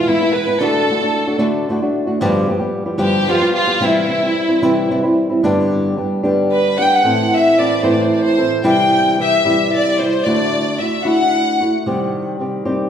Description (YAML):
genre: mexican folk, mariachi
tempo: 74 BPM (dotted quarters)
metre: 6/8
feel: straight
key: C major, G major from 5.4 s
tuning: A4 = 440 Hz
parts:
  - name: warm chamber violin section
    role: melody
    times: 0.0-11.7 s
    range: E4 to G5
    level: -16 LUFS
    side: left 1 dB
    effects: none
  - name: flamenco guitar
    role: accompaniment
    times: 0.0-12.9 s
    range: G2 to A4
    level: -16 LUFS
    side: equal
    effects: none
room: wet recital hall reverb, RT60 1.7 s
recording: recorded in a church or concert hall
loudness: -14 LUFS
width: side -8 dB against mid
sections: 0.0-5.4 A section; 5.4-12.9 B section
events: none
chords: 0.0 E; 0.6 D; 2.2 G7; 3.8 C; 5.4 G; 7.0 Am; 8.6 C; 10.2 Dadd9; 11.9 Cm